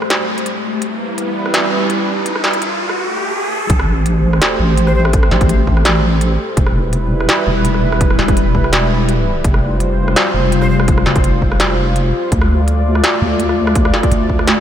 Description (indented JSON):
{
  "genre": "half-time drum and bass",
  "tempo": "167 BPM",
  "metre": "4/4",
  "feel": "swing 54% on 16ths, half-time",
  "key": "A minor",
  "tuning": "A4 = 440 Hz",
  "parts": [
    { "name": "dark analog pad", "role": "sustained chords", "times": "0.0-14.6 s", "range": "G3 to D5", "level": "-19 LUFS", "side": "left 1 dB", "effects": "chorus, sidechain pumping" },
    { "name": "industrial drum kit", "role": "drums", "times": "0.0-14.6 s", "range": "hi-hat, rim click, snare drum", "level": "-18 LUFS", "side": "right 1 dB", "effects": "none" },
    { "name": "riser, swell, sub drop and reverse cymbal", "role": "sound effects", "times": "0.0-5.1, 14.5-14.6 s", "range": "none", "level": "-22 LUFS", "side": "equal", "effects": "none" },
    { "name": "deep soft wobble bass", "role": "bass", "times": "3.7-14.6 s", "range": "E1 to D2", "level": "-15 LUFS", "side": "equal", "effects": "chorus" },
    { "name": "electronic kick drum", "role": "drums", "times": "3.7-14.4 s", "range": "none", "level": "-15 LUFS", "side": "equal", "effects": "none" },
    { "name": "breathy bright jazz flute", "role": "melody", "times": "4.9-5.0, 10.6-10.8 s", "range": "C5", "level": "-28 LUFS", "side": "left 1 dB", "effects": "none" }
  ],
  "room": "moderate huge ambient reverb, RT60 4.3 s",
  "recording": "dreamy mix soaked in reverb, high-pass filter",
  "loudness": "-12 LUFS",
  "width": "side -10 dB against mid",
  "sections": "0.0-3.7 A section; 3.7-14.6 B section",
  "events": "build-up 0.0-3.7; riser 0.0-3.7; swell 3.0-3.7; drop 3.7-14.6; impact 3.7-5.1",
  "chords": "0.0 Am7; 0.8 Em; 3.7 Am7; 6.6 Em; 9.4 Fsus2; 12.3 Dm",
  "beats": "0.10 0.46 | 0.82 1.18 1.54 1.90 | 2.26 2.62 2.98 3.34 | 3.70 4.06 4.42 4.77 | 5.13 5.49 5.85 6.21 | 6.57 6.93 7.29 7.65 | 8.01 8.37 8.73 9.09 | 9.45 9.80 10.16 10.52 | 10.88 11.24 11.60 11.96 | 12.32 12.68 13.04 13.40 | 13.76 14.12 14.47"
}